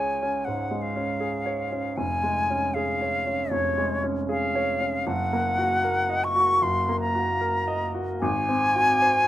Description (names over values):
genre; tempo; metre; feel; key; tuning
classical, romantic duo for flute and grand piano; 74-83 BPM; 4/4; rubato; Db major; A4 = 440 Hz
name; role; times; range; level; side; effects
silver concert flute; melody; 0.0-9.3 s; Db5 to Db6; -24 LUFS; left 1 dB; none
clear grand piano; accompaniment; 0.0-9.3 s; F1 to Eb5; -27 LUFS; equal; none
room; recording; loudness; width
light reverb; none; -22 LUFS; side -13 dB against mid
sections
0.0-9.3 A section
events
none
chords
0.0 Db; 2.0 Db/F; 5.1 Ebm/Gb; 8.2 Ab7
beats
0.47 1.22 | 1.99 2.76 3.53 4.30 | 5.07 5.84 6.62 7.41 | 8.21 9.01